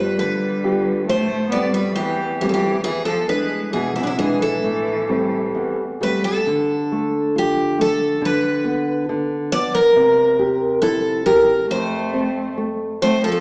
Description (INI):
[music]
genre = fado-style ballad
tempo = 68 BPM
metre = 2/4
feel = rubato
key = A minor, D minor from 6.5 s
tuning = A4 = 440 Hz
[part]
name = picked twelve-string acoustic guitar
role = melody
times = 0.0-13.4 s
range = D4 to D5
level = -22 LUFS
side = equal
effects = none
[part]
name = dark cello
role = second line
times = 0.0-5.7, 11.7-13.4 s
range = B2 to B3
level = -27 LUFS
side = equal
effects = none
[part]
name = nylon-string guitar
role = accompaniment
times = 0.0-13.4 s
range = E2 to G4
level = -24 LUFS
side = equal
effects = none
[sound]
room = wet recital hall reverb, RT60 1.6 s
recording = recorded in a church or concert hall, small speaker sound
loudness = -20 LUFS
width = mono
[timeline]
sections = 0.0-6.5 A section; 6.5-13.4 B section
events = none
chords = 0.0 G7; 1.1 Am7; 2.8 E7; 4.6 Am7; 6.5 Dm; 8.2 Bm/D; 9.9 C7; 11.7 F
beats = 0.20 | 1.09 1.97 | 2.85 3.73 | 4.62 5.54 | 6.46 7.35 | 8.22 9.08 | 9.94 10.80 | 11.67 12.55